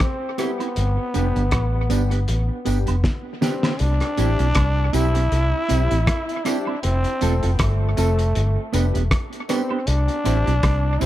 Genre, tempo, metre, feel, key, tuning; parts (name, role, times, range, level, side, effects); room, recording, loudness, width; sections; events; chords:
roots reggae; 79 BPM; 4/4; swing 56% on 16ths; C major; A4 = 440 Hz
growling trombone; melody; 0.0-11.1 s; A3 to E4; -26 LUFS; equal; tape echo
cloth-damped thuddy drum kit; drums; 0.0-11.1 s; hi-hat, kick drum, rim click, snare drum; -25 LUFS; equal; dub echo
mellow electric guitar; accompaniment; 0.4-11.1 s; B3 to A4; -28 LUFS; right 8 dB; tape echo
warm upright piano; stabs; 0.4-11.1 s; G3 to C5; -30 LUFS; left 8 dB
tambourine and woodblock; percussion; 0.4-11.1 s; -36 LUFS; right 4 dB
vintage muted fingered electric bass; bass; 0.8-11.1 s; E1 to C2; -20 LUFS; equal
light reverb, small room ambience; echo-heavy mix; -18 LUFS; side -14 dB against mid
0.0-3.8 A section; 3.8-11.1 B section
drum fill 3.0-3.8
0.0 C; 0.8 G; 3.8 C; 6.8 F; 8.4 G; 9.9 C